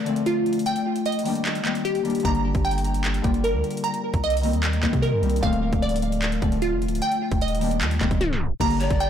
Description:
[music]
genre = hip hop, trap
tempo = 151 BPM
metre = 4/4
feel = half-time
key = unclear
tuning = A4 = 439 Hz
[part]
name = Celtic harp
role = accompaniment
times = 0.0-9.1 s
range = D3 to F4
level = -26 LUFS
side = left 5 dB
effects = none
[part]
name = glassy wavetable pluck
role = arpeggios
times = 0.0-9.1 s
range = F4 to Bb5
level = -26 LUFS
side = right 2 dB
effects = chorus, tape echo
[part]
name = trap drum kit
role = drums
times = 0.1-9.1 s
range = crash cymbal, handclaps, hi-hat, kick drum, snare drum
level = -28 LUFS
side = right 1 dB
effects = overdrive
[part]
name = long sustained 808-style bass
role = bass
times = 2.2-9.1 s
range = D1 to C3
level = -26 LUFS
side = right 1 dB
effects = none
[part]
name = granular cloud pad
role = sustained chords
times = 9.0-9.1 s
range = G3 to Bb4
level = -49 LUFS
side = left 3 dB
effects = none
[part]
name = breathy mellow pan flute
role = second line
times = 8.8-9.1 s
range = D5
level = -26 LUFS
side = left 8 dB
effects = none
[sound]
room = light reverb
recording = blown-out, overdriven recording, overdrive, tape stop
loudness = -21 LUFS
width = side -9 dB against mid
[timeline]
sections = 0.0-8.6 A section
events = break 0.0-2.2; drum fill 8.2-8.6; tape stop 8.2-8.6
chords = 0.0 Dm7; 0.7 Ebmaj7; 2.2 Gm; 3.8 Cm7; 5.4 Dm7; 7.0 Ebmaj7

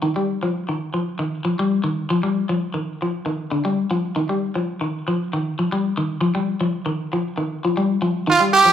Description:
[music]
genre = afrobeat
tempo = 116 BPM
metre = 4/4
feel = straight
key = unclear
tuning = A4 = 440 Hz
[part]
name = electric guitar at the edge of break-up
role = arpeggios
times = 0.0-8.7 s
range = D3 to G3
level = -20 LUFS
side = left 2 dB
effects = phaser
[part]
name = growling trumpet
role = melody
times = 8.3-8.7 s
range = F4 to G4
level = -11 LUFS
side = right 3 dB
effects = none
[sound]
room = moderate large studio reverb, RT60 1.1 s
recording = band playing live in one room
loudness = -20 LUFS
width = side -9 dB against mid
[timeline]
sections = 0.0-8.3 A section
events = none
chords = 0.0 Ebadd9; 2.1 N.C.; 4.2 Ebadd9

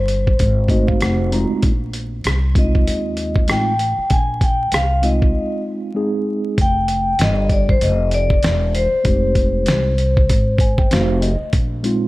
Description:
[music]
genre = hip hop, jazz-hop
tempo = 97 BPM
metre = 4/4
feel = swing 57% on 16ths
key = F dorian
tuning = A4 = 440 Hz
[part]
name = vibraphone with medium hard mallets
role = melody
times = 0.0-11.2 s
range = C5 to Ab5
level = -21 LUFS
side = left 2 dB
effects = none
[part]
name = upright bass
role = bass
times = 0.0-12.1 s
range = E1 to Eb2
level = -20 LUFS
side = equal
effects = none
[part]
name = dusty soul sampler-style drum kit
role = drums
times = 0.1-12.0 s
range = hi-hat, kick drum, rim click, snare drum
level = -18 LUFS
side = equal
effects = none
[part]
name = mellow tine electric piano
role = accompaniment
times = 0.7-12.1 s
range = Ab3 to Bb5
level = -21 LUFS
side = right 1 dB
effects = medium stereo tremolo
[sound]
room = little or no reverb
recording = vinyl crackle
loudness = -15 LUFS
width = side -18 dB against mid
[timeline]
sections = 0.0-6.6 A section; 6.6-12.1 A section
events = tine electric piano fill 0.4-1.6, 10.3-11.5; break 5.3-6.6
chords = 0.0 Fm9; 1.0 F7b9; 1.6 Bb9sus4; 6.6 Fm9; 10.9 F7b9; 11.5 Bb9sus4

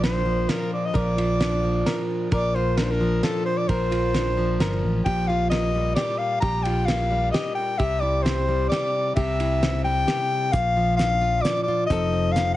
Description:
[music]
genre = acoustic folk duo or small band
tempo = 132 BPM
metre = 3/4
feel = straight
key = Bb major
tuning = A4 = 441 Hz
[part]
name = mellow soprano saxophone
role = melody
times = 0.0-12.6 s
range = A4 to Bb5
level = -25 LUFS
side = left 2 dB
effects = none
[part]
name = nylon-string guitar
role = accompaniment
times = 0.0-12.6 s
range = Bb2 to Bb4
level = -26 LUFS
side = left 1 dB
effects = none
[part]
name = fingered electric bass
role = bass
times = 0.0-12.6 s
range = F1 to C2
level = -25 LUFS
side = equal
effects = none
[part]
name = cloth-damped thuddy drum kit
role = drums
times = 0.0-12.5 s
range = hi-hat, kick drum, ride cymbal, snare drum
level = -29 LUFS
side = right 1 dB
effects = none
[sound]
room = light reverb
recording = heavily compressed radio sound, multiband compression, nothing above 11.0 kHz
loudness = -20 LUFS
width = side -15 dB against mid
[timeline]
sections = 0.0-10.5 A section; 10.5-12.6 B section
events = none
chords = 0.0 Bb; 5.1 Ebadd9/Bb; 7.8 C; 10.5 Bb; 11.9 F7

